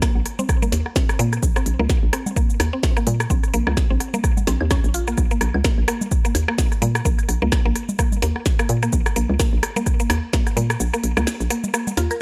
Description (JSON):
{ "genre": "minimal techno", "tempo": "128 BPM", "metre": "4/4", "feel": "swing 57% on 16ths", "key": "Bb minor", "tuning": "A4 = 440 Hz", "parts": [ { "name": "mallet-like synth pluck", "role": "riff", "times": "0.0-12.1 s", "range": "Bb3 to Bb4", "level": "-29 LUFS", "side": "equal", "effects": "chorus, sidechain pumping, tape echo" }, { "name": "electronic kick drum", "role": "drums", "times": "0.0-10.4 s", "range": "none", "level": "-22 LUFS", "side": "equal", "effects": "studio reverb" }, { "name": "minimal click drum kit", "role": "drums", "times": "0.0-12.2 s", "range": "hi-hat, shaker, snare drum", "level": "-29 LUFS", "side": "equal", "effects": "studio reverb" }, { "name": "electronic rim click, woodblock and congas", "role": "percussion", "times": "0.0-12.2 s", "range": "none", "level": "-29 LUFS", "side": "equal", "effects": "studio reverb, digital delay" }, { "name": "hollow knocking FM bass", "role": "bass", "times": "0.2-12.1 s", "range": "Bb1 to Bb2", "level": "-24 LUFS", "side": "equal", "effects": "sidechain pumping" } ], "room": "digital ambience", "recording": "none", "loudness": "-20 LUFS", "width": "mono", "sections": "0.0-12.2 A section", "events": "kick drops out 10.8-12.2", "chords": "none", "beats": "0.02 0.49 0.96 | 1.43 1.90 2.37 2.83 | 3.30 3.77 4.24 4.71 | 5.18 5.65 6.12 6.58 | 7.05 7.52 7.99 8.46 | 8.93 9.40 9.87 10.33 | 10.80 11.27 11.74" }